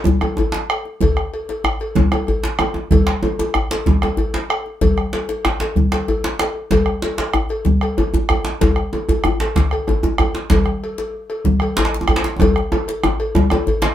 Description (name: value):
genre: west african traditional, West African drum ensemble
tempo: 126 BPM (dotted quarters)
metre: 12/8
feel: straight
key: none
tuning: none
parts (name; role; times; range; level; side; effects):
- djembe; percussion; 0.0-13.9 s; none; -21 LUFS; right 1 dB; none
- bombo; percussion; 0.1-13.7 s; none; -19 LUFS; left 1 dB; none
- congas; percussion; 0.1-13.9 s; none; -21 LUFS; right 2 dB; none
- djembe; percussion; 0.1-13.9 s; none; -22 LUFS; left 1 dB; none
- cowbell; percussion; 0.2-13.8 s; none; -24 LUFS; left 1 dB; none
room: wet studio reverb, RT60 0.5 s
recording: band playing live in one room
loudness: -16 LUFS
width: side -12 dB against mid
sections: 0.0-13.9 A section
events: drum fill 12.4-13.9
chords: none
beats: 0.06 0.53 | 1.01 1.49 1.96 2.44 | 2.91 3.39 3.86 4.34 | 4.82 5.29 5.77 6.24 | 6.72 7.19 7.67 8.14 | 8.62 9.09 9.56 10.04 | 10.52 10.99 11.46 11.94 | 12.41 12.89 13.36 13.83